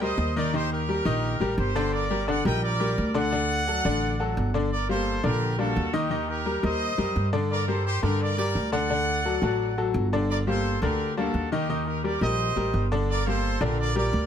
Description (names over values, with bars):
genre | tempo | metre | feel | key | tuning
latin, salsa | 172 BPM | 4/4 | straight | G harmonic minor | A4 = 440 Hz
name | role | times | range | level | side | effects
bright trumpet section | melody | 0.0-14.3 s | Eb4 to G5 | -29 LUFS | right 1 dB | plate reverb
bright grand piano | accompaniment | 0.0-14.2 s | D3 to Eb5 | -27 LUFS | left 2 dB | none
upright bass | bass | 0.0-14.3 s | G1 to G2 | -28 LUFS | right 1 dB | none
room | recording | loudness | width
light reverb | none | -23 LUFS | side -8 dB against mid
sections
0.0-4.7 A section; 4.7-14.3 B section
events
none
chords
0.0 Gm; 0.5 Eb; 1.9 Gm; 3.3 D; 4.7 Gm; 6.1 Eb; 7.5 Gm; 8.9 D; 10.3 Gm; 11.7 Eb; 13.1 Gm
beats
0.18 | 0.53 0.88 1.23 1.57 | 1.93 2.27 2.62 2.97 | 3.32 3.67 4.02 4.37 | 4.72 5.07 5.41 5.76 | 6.11 6.46 6.81 7.16 | 7.51 7.85 8.20 8.55 | 8.90 9.25 9.60 9.95 | 10.29 10.64 10.99 11.34 | 11.69 12.04 12.39 12.74 | 13.08 13.43 13.78 14.13